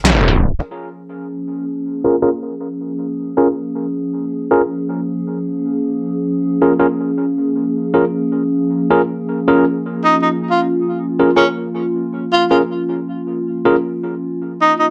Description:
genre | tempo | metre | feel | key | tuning
glitch hop | 105 BPM | 4/4 | swing 62% on 16ths | Bb minor | A4 = 440 Hz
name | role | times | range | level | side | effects
gritty driven synth bass | bass | 0.0-0.6 s | Db2 | -16 LUFS | equal | tube saturation
boom bap sampler-style drum kit | drums | 0.0-0.6 s | hi-hat, snare drum | -17 LUFS | equal | low-pass filter on hats, low-pass filter on perc, low-pass filter on snare
tine electric piano | stabs | 0.3-13.8 s | Db4 to Bb4 | -18 LUFS | equal | low-pass filter, analog delay
warbly tape-like pad | sustained chords | 0.6-14.9 s | F3 to Ab4 | -21 LUFS | equal | chorus, built-in reverb
breathy tenor saxophone | melody | 10.0-14.9 s | Db4 to F4 | -17 LUFS | equal | vintage 12-bit sampler grit
room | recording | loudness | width
wet small room reverb, RT60 0.6 s | dry, gritty hardware recording, tape stop | -17 LUFS | mono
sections
0.6-14.9 A section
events
tape stop 0.0-0.6; band accent 0.1; filter sweep on tine electric piano 0.6-14.9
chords
0.0 Bbm7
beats
0.05 | 0.62 1.19 1.76 2.33 | 2.90 3.48 4.05 4.62 | 5.19 5.76 6.33 6.91 | 7.48 8.05 8.62 9.19 | 9.76 10.33 10.90 11.48 | 12.05 12.62 13.19 13.76 | 14.33

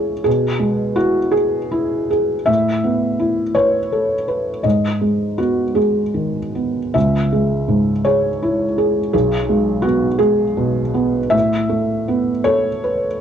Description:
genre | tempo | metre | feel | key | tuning
neoclassical minimalist piano | 50-56 BPM (dotted quarters) | 6/8 | rubato | unclear | A4 = 440 Hz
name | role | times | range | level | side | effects
felt-muted upright piano | solo | 0.0-13.2 s | B1 to E5 | -15 LUFS | equal | none
room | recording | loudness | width
moderate studio reverb, RT60 0.8 s | worn, warbling old tape, cassette tape, warbly pitch drift | -15 LUFS | side -8 dB against mid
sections
0.0-13.2 A section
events
none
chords
0.3 E/B; 2.5 Asus2; 4.6 G#m; 6.9 C#m; 9.1 G#m7/B; 11.3 Asus2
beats
| 0.26 1.34 | 2.48 3.56 | 4.64 5.77 | 6.95 8.05 | 9.13 10.20 | 11.34 12.46

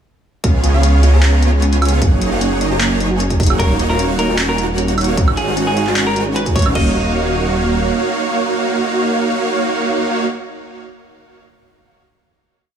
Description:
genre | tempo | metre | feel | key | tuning
future bass | 152 BPM | 4/4 | half-time | Eb minor | A4 = 440 Hz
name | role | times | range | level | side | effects
thumb-piano-like synth pluck | arpeggios | 0.4-6.9 s | Db4 to Eb5 | -25 LUFS | left 2 dB | chorus, sidechain pumping, digital delay
supersaw chords | riff | 0.4-10.2 s | Ab3 to Bb5 | -18 LUFS | right 2 dB | wide subtle chorus, sidechain pumping, digital delay
wide detuned saw bass | bass | 0.4-7.9 s | Eb1 to Db2 | -16 LUFS | equal | chorus, sidechain pumping
dubstep drum kit | drums | 0.4-6.8 s | crash cymbal, handclaps, hi-hat, woodblock | -22 LUFS | right 1 dB | none
electronic kick drum | drums | 0.4-6.8 s | none | -16 LUFS | equal | none
clean electric guitar | melody | 3.6-10.2 s | Ab4 to Eb5 | -22 LUFS | equal | sidechain pumping, tape echo
room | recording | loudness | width
light reverb | small room ambience | -13 LUFS | side -8 dB against mid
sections
0.4-6.8 drop; 6.8-9.9 final chord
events
drop 0.4-6.8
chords
0.4 Db7; 2.0 Gb69; 3.6 Ebm9; 5.2 Ab7sus4; 6.8 Ebm9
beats
| 0.44 0.83 1.23 1.62 | 2.02 2.41 2.81 3.20 | 3.60 3.99 4.38 4.78 | 5.17 5.57 5.96 6.36 | 6.75 7.15 7.54 7.94 | 8.33 8.73 9.12 9.52

